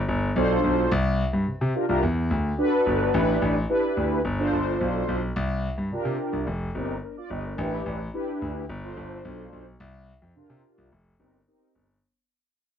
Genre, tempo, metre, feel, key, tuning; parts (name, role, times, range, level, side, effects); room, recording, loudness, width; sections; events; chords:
early-eighties boogie funk; 108 BPM; 4/4; straight; A4 = 440 Hz
warm concert grand piano; bass; 0.1-12.0 s; F1 to C3; -26 LUFS; left 1 dB
mellow synth brass; accompaniment; 0.4-11.9 s; C4 to Eb5; -25 LUFS; equal; chorus
light reverb; dry, close 1970s-style studio recording; -23 LUFS; side -8 dB against mid
0.0-3.1 A section; 3.1-12.0 B section
fade-out 3.1-12.0
0.0 G9sus4; 0.9 C9sus4; 2.0 E9sus4; 3.1 A9sus4; 4.2 G9sus4; 5.4 C9sus4; 6.5 F9sus4; 7.6 A9sus4; 8.7 G9sus4; 9.8 C9sus4; 10.9 F9sus4